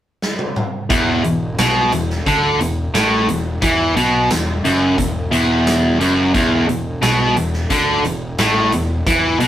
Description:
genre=classic rock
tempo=88 BPM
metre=4/4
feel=straight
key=unclear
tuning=A4 = 438 Hz
part: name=big rock drum kit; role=drums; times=0.2-9.5 s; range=hi-hat, kick drum, snare drum, tambourine, toms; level=-23 LUFS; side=equal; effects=none
part: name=distorted electric guitar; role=riff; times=0.9-9.5 s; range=E2 to E3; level=-15 LUFS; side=equal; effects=overdrive
part: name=fuzz picked electric bass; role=bass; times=0.9-9.5 s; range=E1 to E2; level=-24 LUFS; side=equal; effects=overdrive
room=moderate studio ambience, RT60 0.5 s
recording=rough rehearsal-room recording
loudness=-14 LUFS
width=side -11 dB against mid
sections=0.9-9.5 A section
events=drum fill 0.2-0.9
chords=0.0 N.C.; 0.9 E5

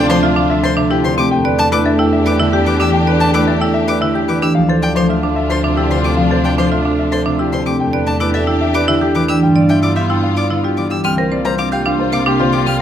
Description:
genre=classical, minimalist pattern music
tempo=111 BPM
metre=3/4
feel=straight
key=D dorian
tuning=A4 = 441 Hz
part: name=clear concert grand piano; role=melody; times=0.0-12.8 s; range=G4 to G5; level=-21 LUFS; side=left 6 dB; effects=none
part: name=concert harp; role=accompaniment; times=0.0-12.8 s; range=C3 to D4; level=-17 LUFS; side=equal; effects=none
part: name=rich studio string section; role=sustained chords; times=0.0-12.8 s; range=Bb3 to G4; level=-22 LUFS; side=left 2 dB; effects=none
part: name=clear violin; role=arpeggios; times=0.0-12.8 s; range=E5 to F6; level=-22 LUFS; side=left 2 dB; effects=none
part: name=warm chamber double bass section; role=bass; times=0.0-12.8 s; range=C2 to G2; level=-21 LUFS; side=right 1 dB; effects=none
part: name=marimba with hard mallets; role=arpeggios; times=0.1-12.8 s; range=C4 to D5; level=-19 LUFS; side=right 5 dB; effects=none
room=moderate recital hall reverb, RT60 1.5 s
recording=close, detailed microphones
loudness=-12 LUFS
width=side -10 dB against mid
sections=0.0-11.0 A section; 11.0-12.8 B section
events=none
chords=0.0 Dm9; 1.3 Em7; 4.6 Dm9; 7.8 Em7; 9.4 G7; 11.0 C7sus4

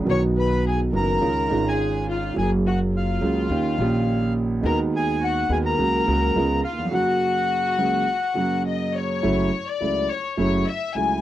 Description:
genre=tango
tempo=105 BPM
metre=4/4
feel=rubato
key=F# major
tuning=A4 = 439 Hz
part: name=warm concert grand piano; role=accompaniment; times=0.0-11.2 s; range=F#1 to G#4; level=-22 LUFS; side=right 2 dB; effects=none
part: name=upright bass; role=bass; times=0.0-11.2 s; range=F#1 to D#2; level=-27 LUFS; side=equal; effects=none
part: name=bandoneon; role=melody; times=0.1-8.6 s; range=E#5 to C#6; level=-25 LUFS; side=left 2 dB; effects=none
part: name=warm studio violin section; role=second line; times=0.1-11.2 s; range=E#4 to G#5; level=-28 LUFS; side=left 7 dB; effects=none
room=light reverb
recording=dry, close 1970s-style studio recording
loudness=-20 LUFS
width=side -13 dB against mid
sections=0.0-9.2 A section; 9.2-11.2 B section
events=violin section solo 9.2-11.2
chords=0.1 B; 1.2 C#add9; 2.4 F#add9; 3.5 D#7; 4.6 G#m7/D#; 5.8 F#/C#; 6.4 C#7; 6.9 F#; 9.2 F#m7

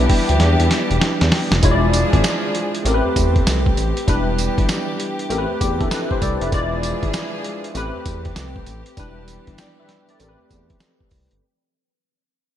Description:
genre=R&B, new jack swing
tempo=98 BPM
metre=4/4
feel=swing 64% on 16ths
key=A minor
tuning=A4 = 439 Hz
part: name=barky tine electric piano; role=accompaniment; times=0.0-11.4 s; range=G3 to A5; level=-23 LUFS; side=left 2 dB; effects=analog chorus
part: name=dark studio string section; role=sustained chords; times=0.0-11.4 s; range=E3 to G#4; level=-25 LUFS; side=right 1 dB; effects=none
part: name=smooth synth bass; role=bass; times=0.0-11.4 s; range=E1 to E2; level=-20 LUFS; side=equal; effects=none
part: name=dusty soul sampler-style drum kit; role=drums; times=0.1-11.4 s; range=hi-hat, kick drum, snare drum, tambourine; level=-20 LUFS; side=equal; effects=overdrive, gated reverb
room=light reverb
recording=bright 1980s-style digital production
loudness=-16 LUFS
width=side -11 dB against mid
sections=0.0-1.6 A section; 1.6-11.4 B section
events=drum fill 0.4-1.6; fade-out 1.6-11.4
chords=0.0 Em7; 1.6 E7b9; 2.9 Am9; 4.1 Em7; 5.3 Am9; 6.5 E7b9; 7.7 Am9; 9.0 Em7; 10.2 Am9

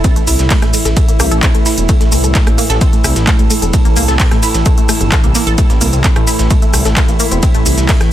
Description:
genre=driving peak-time techno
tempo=130 BPM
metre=4/4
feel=straight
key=A minor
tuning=A4 = 440 Hz
part: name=tight sequenced synth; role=riff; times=0.0-8.0 s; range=A3 to A4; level=-20 LUFS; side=equal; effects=chorus, sidechain pumping, tape echo
part: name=deep dark ambient pad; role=drone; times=0.0-8.1 s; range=A2 to E3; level=-22 LUFS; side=equal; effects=chorus, built-in reverb, sidechain pumping
part: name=breakbeat sampler-style drum kit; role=drums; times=0.0-8.1 s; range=hi-hat, ride cymbal, snare drum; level=-26 LUFS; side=right 3 dB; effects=sidechain pumping on cymbals, high-pass filter on cymbals, high-pass filter on snare, sidechain pumping on hats, high-pass filter on hats
part: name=electronic kick drum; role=drums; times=0.0-8.0 s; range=none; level=-12 LUFS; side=equal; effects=none
part: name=techno drum kit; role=drums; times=0.0-8.1 s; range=handclaps, hi-hat, rim click, shaker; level=-17 LUFS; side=equal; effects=none
part: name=warbly tape-like pad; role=texture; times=0.0-8.1 s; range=E4 to A5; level=-21 LUFS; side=right 2 dB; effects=chorus, built-in reverb, sidechain pumping
part: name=detuned saw bass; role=bass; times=0.2-8.1 s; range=E1 to C2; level=-16 LUFS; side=equal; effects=sidechain pumping
room=digital ambience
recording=dense, heavily limited modern master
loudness=-9 LUFS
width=side -12 dB against mid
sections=0.0-8.1 A section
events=none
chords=0.0 A5

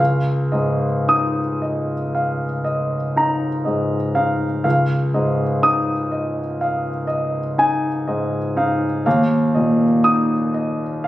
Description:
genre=classical, impressionist solo piano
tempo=37-42 BPM (dotted quarters)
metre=9/8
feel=rubato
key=Db major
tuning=A4 = 440 Hz
part: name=warm concert grand piano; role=solo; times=0.0-11.1 s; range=Db2 to Eb6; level=-17 LUFS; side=equal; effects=none
room=moderate recital hall reverb, RT60 1.4 s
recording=recorded on a phone in the room, studio reverb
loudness=-17 LUFS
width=side -15 dB against mid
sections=0.0-11.1 A section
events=none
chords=0.0 Db69; 4.6 Fm7/Db; 9.1 Ebsus2

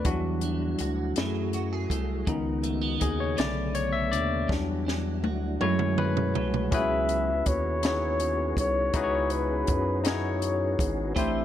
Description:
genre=slow six-eight R&B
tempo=54 BPM (dotted quarters)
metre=6/8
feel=straight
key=unclear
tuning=A4 = 441 Hz
part: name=clean electric guitar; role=second line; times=0.0-7.3, 11.2-11.4 s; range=C#3 to C#5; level=-34 LUFS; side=right 8 dB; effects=lush chorus
part: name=barky tine electric piano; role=accompaniment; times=0.0-11.4 s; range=C#3 to E5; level=-29 LUFS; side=left 5 dB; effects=overdrive
part: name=tonewheel organ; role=sustained chords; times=0.0-11.4 s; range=B2 to G#4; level=-38 LUFS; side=right 2 dB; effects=chorus vibrato, slow rotary speaker
part: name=rubbery square bass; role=bass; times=0.0-11.4 s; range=G#1 to F#2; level=-31 LUFS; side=right 1 dB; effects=none
part: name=compact cocktail drum kit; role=drums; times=0.0-11.3 s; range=hi-hat, kick drum, snare drum, toms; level=-30 LUFS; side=right 1 dB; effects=none
part: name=breathy flugelhorn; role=melody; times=6.7-11.4 s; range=B4 to E5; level=-29 LUFS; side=left 1 dB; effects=none
room=light reverb, studio ambience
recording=dark, warm production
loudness=-25 LUFS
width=side -11 dB against mid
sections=0.0-6.7 A section; 6.7-11.4 B section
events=tine electric piano solo 0.0-6.7; drum fill 4.5-6.7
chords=0.1 Em9; 1.2 F#m9; 2.3 C#sus2; 3.4 Bm9; 4.5 Em9; 5.6 F#m9; 6.7 C#m11

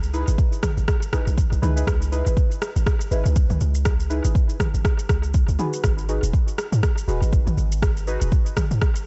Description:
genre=afro house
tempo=121 BPM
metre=4/4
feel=swing 57% on 16ths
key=C# minor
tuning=A4 = 440 Hz
part: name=deep mellow chord stab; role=stabs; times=0.0-9.0 s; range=D#4 to B4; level=-33 LUFS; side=equal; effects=chorus, phaser, sidechain pumping, analog delay
part: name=warm 808-style bass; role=bass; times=0.0-8.8 s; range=D#1 to G#2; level=-24 LUFS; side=equal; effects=sidechain pumping
part: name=deep house drum kit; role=drums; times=0.0-9.0 s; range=rim click, shaker, toms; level=-31 LUFS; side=equal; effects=overdrive, studio reverb, analog delay
part: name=electronic kick drum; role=drums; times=0.4-8.9 s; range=none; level=-23 LUFS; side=equal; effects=overdrive, studio reverb
room=digital ambience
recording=echo-heavy mix, nothing above 7.9 kHz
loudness=-21 LUFS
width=mono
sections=0.0-9.1 A section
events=none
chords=0.0 C#m9; 5.8 G#m7

